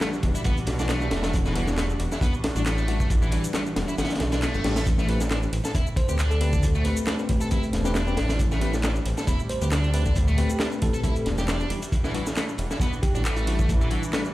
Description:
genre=breakbeat, breaks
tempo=136 BPM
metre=4/4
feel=swing 54% on 16ths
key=A minor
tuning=A4 = 440 Hz
part: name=dark studio string section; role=sustained chords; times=0.0-14.3 s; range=E3 to F#4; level=-35 LUFS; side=right 1 dB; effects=sidechain pumping
part: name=overdriven electric guitar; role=riff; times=0.0-14.2 s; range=E3 to A4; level=-32 LUFS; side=equal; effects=tube saturation, tape echo
part: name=tine electric piano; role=stabs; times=0.0-14.3 s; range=E3 to B4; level=-32 LUFS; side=left 2 dB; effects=medium stereo tremolo, tape echo
part: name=crunchy breakbeat drum kit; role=drums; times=0.0-14.2 s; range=hi-hat, kick drum, snare drum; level=-26 LUFS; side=equal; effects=none
part: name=garage drum kit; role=drums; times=0.0-14.3 s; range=handclaps, ride cymbal, shaker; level=-36 LUFS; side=equal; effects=none
part: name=dark detuned saw bass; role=bass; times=0.2-14.0 s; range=E1 to D2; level=-25 LUFS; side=equal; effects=none
part: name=reverse cymbal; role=sound effects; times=4.3-4.9 s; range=none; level=-40 LUFS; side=right 4 dB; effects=none
part: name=bell-like FM electric piano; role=melody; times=6.0-6.7, 9.5-13.8 s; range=E4 to C5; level=-35 LUFS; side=right 1 dB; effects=chorus, phaser, old record sound, tape echo
room=light reverb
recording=played on a big sound system in a bare room, large studio reverb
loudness=-22 LUFS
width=side -16 dB against mid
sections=0.0-14.3 A section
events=reverse cymbal 4.3-4.9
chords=0.0 Em9; 4.9 Am9; 11.7 Em9

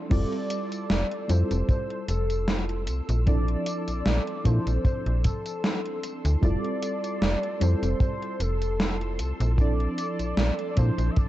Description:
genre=vaporwave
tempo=76 BPM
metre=4/4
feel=swing 55% on 16ths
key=F major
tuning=A4 = 440 Hz
part: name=mellow FM electric piano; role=accompaniment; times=0.0-11.3 s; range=F3 to E5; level=-32 LUFS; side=right 1 dB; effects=tremolo, analog chorus
part: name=soft string machine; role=sustained chords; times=0.0-11.3 s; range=A4 to E6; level=-41 LUFS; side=equal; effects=ensemble chorus
part: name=warm velvety synth lead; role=melody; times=0.1-11.3 s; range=A4 to E5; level=-33 LUFS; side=equal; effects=chorus, tape echo
part: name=slap-like FM bass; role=bass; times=0.1-11.1 s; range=F1 to Bb2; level=-25 LUFS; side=equal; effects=none
part: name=gated 80s digital drum machine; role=drums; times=0.1-11.3 s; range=crash cymbal, hi-hat, snare drum, tambourine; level=-30 LUFS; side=right 1 dB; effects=gated reverb, gated reverb snare, vintage 12-bit sampler grit
part: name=kick drum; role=drums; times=0.1-11.3 s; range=none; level=-24 LUFS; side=equal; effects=vintage 12-bit sampler grit
room=digital ambience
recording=dark, warm production, nothing above 8.0 kHz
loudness=-24 LUFS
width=side -14 dB against mid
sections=0.1-11.3 A section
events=none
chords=0.1 Fmaj7; 3.3 Bbmaj9#11; 6.4 Fmaj7; 9.6 Bbmaj9#11

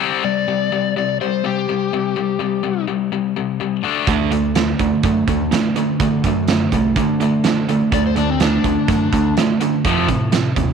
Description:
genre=classic rock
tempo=125 BPM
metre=4/4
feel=straight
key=unclear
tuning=A4 = 440 Hz
part: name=overdriven electric guitar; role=riff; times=0.0-10.7 s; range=F2 to D4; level=-21 LUFS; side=left 10 dB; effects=none
part: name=overdriven slide guitar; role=second line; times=0.2-2.9, 7.9-9.3 s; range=C4 to D5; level=-22 LUFS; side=left 8 dB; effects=none
part: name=overdriven semi-hollow guitar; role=riff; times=4.1-10.7 s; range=F2 to D4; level=-19 LUFS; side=right 11 dB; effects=none
part: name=growling fingered electric bass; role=bass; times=4.1-10.7 s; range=C2 to D3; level=-23 LUFS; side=right 1 dB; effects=overdrive, transformer saturation
part: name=big rock drum kit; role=drums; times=4.1-10.7 s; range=hi-hat, kick drum, snare drum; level=-21 LUFS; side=right 4 dB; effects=none
room=moderate spring reverb, RT60 2.0 s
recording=1960s-style stereo with parts hard left and right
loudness=-16 LUFS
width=side -6 dB against mid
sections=0.0-10.7 A section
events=none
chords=0.0 C5; 3.8 D; 9.8 F7

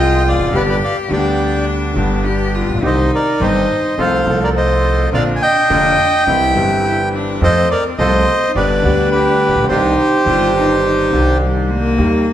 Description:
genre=tango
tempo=105 BPM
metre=4/4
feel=rubato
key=C minor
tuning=A4 = 438 Hz
part: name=bandoneon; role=melody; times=0.0-11.4 s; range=G4 to Ab5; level=-15 LUFS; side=right 1 dB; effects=none
part: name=bright cello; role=second line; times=0.0-12.3 s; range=G3 to G4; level=-21 LUFS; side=left 3 dB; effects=none
part: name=clear concert grand piano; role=accompaniment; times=0.0-12.2 s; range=F1 to A4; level=-18 LUFS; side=left 1 dB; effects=none
part: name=bandoneon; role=stabs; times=0.0-11.9 s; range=B3 to C5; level=-28 LUFS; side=right 4 dB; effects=none
part: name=upright bass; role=bass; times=0.0-12.2 s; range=E1 to F2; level=-20 LUFS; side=right 1 dB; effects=none
room=wet recital hall reverb, RT60 1.4 s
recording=recorded in a church or concert hall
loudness=-12 LUFS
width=side -11 dB against mid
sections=0.0-12.0 A section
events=none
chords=0.0 Fm; 0.5 G; 2.8 Cm; 4.0 F/C; 5.1 Bbadd9; 6.3 C; 7.4 F; 8.6 G; 9.7 Cmadd9

